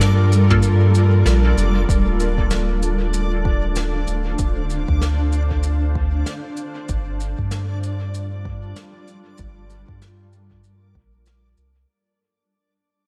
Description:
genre	ambient dub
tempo	96 BPM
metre	4/4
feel	swing 58% on 16ths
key	unclear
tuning	A4 = 440 Hz
part	granular cloud pad	sustained chords	0.0-11.9 s	G3 to F5	-27 LUFS	equal	built-in reverb, vintage 12-bit sampler grit
part	soft dub sub bass	bass	0.0-11.9 s	D1 to G2	-21 LUFS	equal	none
part	soft brush drum kit	drums	0.0-11.7 s	shaker, snare drum, toms	-32 LUFS	equal	dub echo
part	backwards swelling texture	texture	0.0-11.9 s	D4 to D5	-34 LUFS	equal	built-in reverb
part	filtered dub chord stab	stabs	0.5-0.6 s	Bb3 to A4	-31 LUFS	equal	phaser, dub echo
part	electronic kick drum	drums	0.5-11.1 s	none	-25 LUFS	equal	none
room	light reverb, small room ambience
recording	none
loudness	-19 LUFS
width	mono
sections	0.0-1.9 A section; 1.9-11.9 B section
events	kick drops out 0.6-1.9; fade-out 1.9-11.9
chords	0.0 Gm9; 1.9 Dm7; 6.9 Gm9

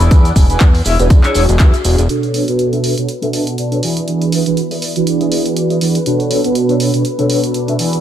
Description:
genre	filtered disco house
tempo	121 BPM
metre	4/4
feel	swing 56% on 16ths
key	B dorian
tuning	A4 = 440 Hz
part	mellow synth brass	accompaniment	0.0-8.0 s	B2 to D5	-16 LUFS	right 2 dB	chorus, phaser, sidechain pumping, low-pass filter
part	mellow electric guitar	riff	0.0-8.0 s	D4 to E5	-21 LUFS	left 2 dB	tremolo, sidechain pumping, low-pass filter
part	fat analog bass	bass	0.0-2.1 s	E1 to E2	-14 LUFS	equal	tube saturation, sidechain pumping, low-pass filter
part	punchy analog drum machine	drums	0.0-8.0 s	handclaps, hi-hat, shaker	-22 LUFS	right 2 dB	sidechain pumping on hats, sidechain pumping on perc
part	tambourine	percussion	0.0-8.0 s	none	-32 LUFS	right 1 dB	sidechain pumping on perc, low-pass filter on perc
part	electronic kick drum	drums	0.1-1.7 s	none	-8 LUFS	equal	none
part	string machine, full ensemble	sustained chords	2.1-8.0 s	B4 to B5	-24 LUFS	equal	ensemble chorus, sidechain pumping, low-pass filter
room	light reverb, digital ambience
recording	none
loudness	-12 LUFS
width	side -10 dB against mid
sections	0.0-2.1 A section; 2.1-8.0 B section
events	filter sweep 2.1-8.0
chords	0.0 E7; 2.1 Bm9; 3.8 E7; 6.1 Bm9

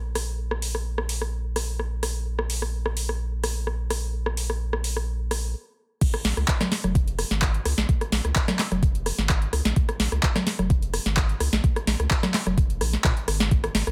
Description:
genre	acid house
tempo	128 BPM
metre	4/4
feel	straight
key	Bb minor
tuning	A4 = 440 Hz
part	round analog bass	bass	0.0-13.9 s	F1 to Bb2	-29 LUFS	equal	tube saturation, sidechain pumping
part	booming analog drum machine	drums	0.2-13.9 s	congas, crash cymbal, handclaps, hi-hat, rim click, snare drum	-28 LUFS	equal	none
part	electronic kick drum	drums	6.0-13.6 s	none	-24 LUFS	equal	overdrive
room	little or no reverb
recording	none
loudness	-25 LUFS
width	mono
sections	0.0-6.0 A section; 6.0-13.9 B section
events	stop 5.5-6.0; drop 6.0-13.9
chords	none

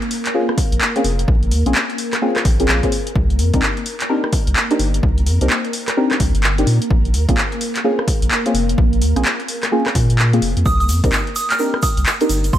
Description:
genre	UK garage, two-step garage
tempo	128 BPM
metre	4/4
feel	swing 63% on 16ths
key	unclear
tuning	A4 = 440 Hz
part	ethereal airy pad	sustained chords	0.0-12.6 s	Bb3 to Bb4	-26 LUFS	left 1 dB	ensemble chorus, built-in reverb, phaser, vintage 12-bit sampler grit, sidechain pumping
part	punchy analog drum machine	drums	0.0-12.5 s	handclaps, hi-hat, rim click	-21 LUFS	equal	none
part	deep mellow chord stab	stabs	0.3-12.3 s	Bb3 to Bb4	-21 LUFS	equal	chorus, phaser, ping-pong delay
part	electronic kick drum	drums	0.6-12.6 s	none	-19 LUFS	equal	none
part	saturated sub bass	bass	0.7-12.6 s	F1 to Bb2	-17 LUFS	equal	none
part	soft synth bell	melody	10.7-12.6 s	C6 to F6	-22 LUFS	right 3 dB	chorus, ping-pong delay
part	tube shaker	percussion	10.7-12.6 s	none	-30 LUFS	right 4 dB	none
room	light reverb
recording	vinyl crackle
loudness	-15 LUFS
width	side -12 dB against mid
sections	0.0-12.6 A section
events	none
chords	0.0 Bbm9; 3.2 Cm9; 6.7 Bbm9; 10.7 Cm9

